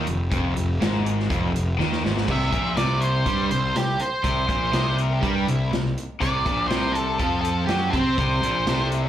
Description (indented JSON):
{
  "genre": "classic rock",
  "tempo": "122 BPM",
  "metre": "4/4",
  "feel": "straight",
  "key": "unclear",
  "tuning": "A4 = 440 Hz",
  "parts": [
    { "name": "cranked stack guitar", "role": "riff", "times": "0.0-9.1 s", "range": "F2 to C4", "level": "-28 LUFS", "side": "left 8 dB", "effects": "overdrive" },
    { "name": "overdriven semi-hollow guitar", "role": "riff", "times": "0.0-9.1 s", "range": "F2 to C4", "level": "-27 LUFS", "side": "right 5 dB", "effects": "spring reverb, slapback echo" },
    { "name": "fuzz picked electric bass", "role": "bass", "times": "0.0-9.1 s", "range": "F1 to C3", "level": "-26 LUFS", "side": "equal", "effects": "overdrive" },
    { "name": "vintage drum kit", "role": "drums", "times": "0.1-9.0 s", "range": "crash cymbal, hi-hat, kick drum, snare drum", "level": "-28 LUFS", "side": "equal", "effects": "none" },
    { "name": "octave-fuzz lead guitar", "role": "melody", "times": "2.3-8.9 s", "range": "G4 to E5", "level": "-25 LUFS", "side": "right 1 dB", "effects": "distortion, slapback echo" },
    { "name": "octave-fuzz lead guitar", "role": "second line", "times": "4.7-5.7, 8.7-9.1 s", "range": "E4 to Eb5", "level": "-32 LUFS", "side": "left 3 dB", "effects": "distortion, slapback echo" }
  ],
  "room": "light reverb",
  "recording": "live gig heard through the venue's PA, club reverb",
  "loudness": "-20 LUFS",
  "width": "side -11 dB against mid",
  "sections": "0.0-2.3 A section; 2.3-9.1 B section",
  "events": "drum fill 1.8-2.3",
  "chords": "0.0 Fm7; 2.3 C5",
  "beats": "| 0.31 0.80 1.29 1.79 | 2.28 2.77 3.26 3.75 | 4.25 4.74 5.23 5.72 | 6.21 6.71 7.20 7.69 | 8.18 8.68"
}